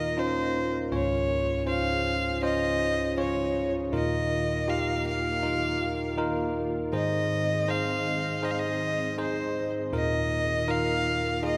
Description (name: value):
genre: pop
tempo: 80 BPM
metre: 4/4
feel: straight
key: unclear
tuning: A4 = 439 Hz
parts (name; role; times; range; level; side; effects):
- warm violin; melody; 0.0-11.6 s; C5 to F5; -31 LUFS; equal; none
- bell-like tine electric piano; accompaniment; 0.0-11.6 s; Db2 to Db5; -31 LUFS; equal; none
- glassy FM pad; sustained chords; 0.0-11.6 s; Db2 to Eb5; -39 LUFS; equal; ensemble chorus, built-in reverb
room: moderate lush hall reverb, RT60 2.8 s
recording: rough home demo mix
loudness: -28 LUFS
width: mono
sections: 0.0-11.6 A section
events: none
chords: 0.0 Ebsus2; 0.9 Dbmaj7; 3.9 Ebsus2; 6.9 Ab; 9.9 Ebsus2